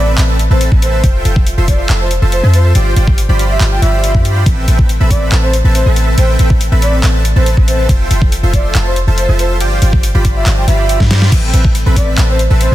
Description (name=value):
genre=future bass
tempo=140 BPM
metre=4/4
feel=half-time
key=A minor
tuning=A4 = 440 Hz
part: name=breathy flute-like synth lead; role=melody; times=0.0-12.7 s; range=C5 to G5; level=-21 LUFS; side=equal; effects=chorus, cassette tape, sidechain pumping, ping-pong delay
part: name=dense compressed supersaw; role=riff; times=0.0-12.7 s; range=C4 to C6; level=-18 LUFS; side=right 1 dB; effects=sidechain pumping, ping-pong delay
part: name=warm 808-style bass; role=bass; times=0.0-12.7 s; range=F1 to G2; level=-11 LUFS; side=equal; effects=sidechain pumping
part: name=dubstep drum kit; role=drums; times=0.2-12.7 s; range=crash cymbal, handclaps, hi-hat, ride cymbal, snare drum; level=-20 LUFS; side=equal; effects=overdrive, small room ambience
part: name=electronic kick drum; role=drums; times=0.7-12.1 s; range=none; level=-12 LUFS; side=equal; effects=overdrive, small room ambience
room=digital ambience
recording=dense, heavily limited modern master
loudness=-9 LUFS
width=side -14 dB against mid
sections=0.0-12.7 A section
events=drum fill 11.0-11.3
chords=0.0 Amadd9; 1.0 Fmaj9; 2.8 G7sus4; 4.5 Am9; 7.9 Fmaj9; 9.6 G7sus4; 11.3 Am9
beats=0.18 0.61 | 1.04 1.46 1.89 2.32 | 2.75 3.18 3.61 4.04 | 4.46 4.89 5.32 5.75 | 6.18 6.61 7.04 7.46 | 7.89 8.32 8.75 9.18 | 9.61 10.04 10.46 10.89 | 11.32 11.75 12.18 12.61